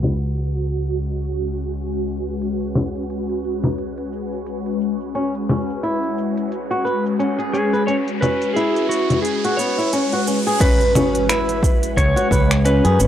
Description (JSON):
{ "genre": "organic downtempo", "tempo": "88 BPM", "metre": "4/4", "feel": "swing 57% on 16ths", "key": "C# minor pentatonic", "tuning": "A4 = 440 Hz", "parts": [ { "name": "ethereal airy pad", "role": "sustained chords", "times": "0.0-13.1 s", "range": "G#3 to B4", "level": "-24 LUFS", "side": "left 1 dB", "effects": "ensemble chorus, built-in reverb, phaser, sidechain pumping" }, { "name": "fretless electric bass", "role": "bass", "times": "0.0-13.1 s", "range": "G#1 to F#2", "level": "-22 LUFS", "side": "equal", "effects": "lush chorus" }, { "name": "deep house drum kit", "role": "drums", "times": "0.0-13.1 s", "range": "congas, crash cymbal, finger snaps, hi-hat, shaker", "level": "-22 LUFS", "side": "left 1 dB", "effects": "none" }, { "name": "flamenco guitar", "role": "arpeggios", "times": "5.1-13.1 s", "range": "B3 to B4", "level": "-22 LUFS", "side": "equal", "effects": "analog delay" }, { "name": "riser and impact", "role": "sound effects", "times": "7.0-13.1 s", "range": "none", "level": "-28 LUFS", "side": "equal", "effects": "none" }, { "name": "clean lap steel guitar", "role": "melody", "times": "7.5-13.1 s", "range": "F#4 to C#5", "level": "-21 LUFS", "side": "equal", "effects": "analog delay" }, { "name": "electronic kick drum", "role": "drums", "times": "10.6-12.5 s", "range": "none", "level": "-18 LUFS", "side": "equal", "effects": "none" } ], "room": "little or no reverb", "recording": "dry, gritty hardware recording, low-pass filter", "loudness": "-18 LUFS", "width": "side -10 dB against mid", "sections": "0.0-10.6 A section; 10.6-13.1 B section", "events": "filter sweep 0.0-10.6; riser 7.0-10.6; impact 10.6-13.1", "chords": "0.0 C#m7" }